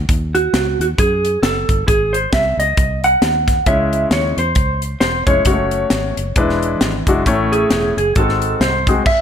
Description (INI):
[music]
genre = uptempo gospel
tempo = 134 BPM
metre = 4/4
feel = swing 59% on 8ths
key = unclear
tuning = A4 = 442 Hz
[part]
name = fingered electric bass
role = bass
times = 0.0-9.0 s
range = E1 to F#2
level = -22 LUFS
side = equal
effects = none
[part]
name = crisp fusion drum kit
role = drums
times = 0.1-9.2 s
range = crash cymbal, hi-hat, kick drum, snare drum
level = -18 LUFS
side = equal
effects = none
[part]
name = mellow electric guitar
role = melody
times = 0.3-9.2 s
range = F#4 to F#5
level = -17 LUFS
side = right 2 dB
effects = tremolo
[part]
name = warm baby grand piano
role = accompaniment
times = 3.7-9.0 s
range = G#2 to C#5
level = -18 LUFS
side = left 3 dB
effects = none
[sound]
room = light reverb, small room reverb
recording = none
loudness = -14 LUFS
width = side -8 dB against mid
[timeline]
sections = 0.0-9.2 A section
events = none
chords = 0.1 D#dim; 1.9 G#; 3.7 C#m; 5.5 F#m; 6.4 E7; 7.3 A; 8.2 G#7b9